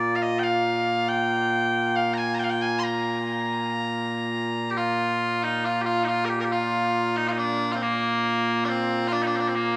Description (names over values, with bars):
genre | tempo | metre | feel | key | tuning
scottish traditional, Scottish pipe music | 69 BPM | 3/4 | straight | Bb major | A4 = 440 Hz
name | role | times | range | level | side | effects
loud bright bagpipes | solo | 0.0-9.8 s | Bb2 to C6 | -25 LUFS | equal | none
room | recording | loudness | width
moderate huge ambient reverb, RT60 7.0 s | small room ambience | -25 LUFS | mono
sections
0.0-4.8 A section; 4.8-9.8 B section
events
none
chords
none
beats
0.42 1.29 | 2.16 3.03 3.90 | 4.77 5.64 6.51 | 7.38 8.25 9.12